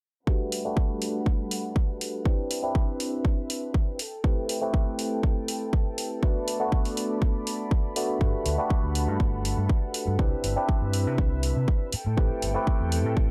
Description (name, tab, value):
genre	filtered disco house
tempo	121 BPM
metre	4/4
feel	straight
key	G major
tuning	A4 = 440 Hz
part	barky tine electric piano	accompaniment	0.3-13.3 s	A3 to D5	-32 LUFS	equal	phaser, sidechain pumping, low-pass filter
part	warm chamber string section	sustained chords	0.3-13.3 s	G3 to B5	-40 LUFS	equal	sidechain pumping, low-pass filter
part	electronic kick drum	drums	0.3-13.3 s	none	-26 LUFS	equal	none
part	electronic hi-hat	drums	0.5-13.0 s	none	-35 LUFS	equal	sidechain pumping on hats
part	overdriven fingered electric bass	bass	8.2-13.3 s	G1 to C3	-30 LUFS	equal	sidechain pumping, low-pass filter
room	little or no reverb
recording	none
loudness	-27 LUFS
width	mono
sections	0.3-13.3 A section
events	filter sweep 0.3-13.3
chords	0.3 Gmaj9; 2.3 Cmaj7; 4.0 Am7; 6.2 Bm7; 8.2 Gmaj9; 10.2 Cmaj7; 11.9 Am7